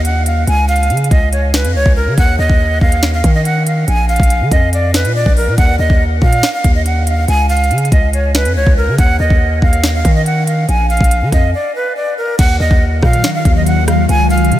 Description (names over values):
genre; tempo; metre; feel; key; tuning
hip hop, drill; 141 BPM; 4/4; half-time; Eb minor; A4 = 442 Hz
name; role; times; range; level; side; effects
breathy jazz flute; melody; 0.0-14.6 s; Bb4 to Ab5; -16 LUFS; right 1 dB; tape echo
long sustained 808-style bass; bass; 0.0-14.6 s; Bb1 to Eb3; -14 LUFS; equal; none
drill drum kit; drums; 0.0-14.6 s; crash cymbal, finger snaps, hi-hat, kick drum, rim click, snare drum; -15 LUFS; equal; none
ethereal airy pad; sustained chords; 13.1-14.6 s; Db3 to F4; -18 LUFS; left 2 dB; ensemble chorus, built-in reverb
room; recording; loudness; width
light reverb, digital ambience; none; -10 LUFS; side -13 dB against mid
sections
0.0-12.4 A section; 12.4-14.6 B section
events
break 11.5-12.4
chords
0.5 Db; 2.2 Ebmadd9; 3.9 Bb; 5.6 Eb5; 7.3 Db; 9.0 Ebmadd9; 10.7 Bb; 12.4 Ebmadd9; 14.1 Db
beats
0.05 | 0.47 0.90 1.32 1.75 | 2.18 2.60 3.03 3.45 | 3.88 4.30 4.73 5.15 | 5.58 6.01 6.43 6.86 | 7.28 7.71 8.13 8.56 | 8.98 9.41 9.84 10.26 | 10.69 11.11 11.54 11.96 | 12.39 12.81 13.24 13.66 | 14.09 14.52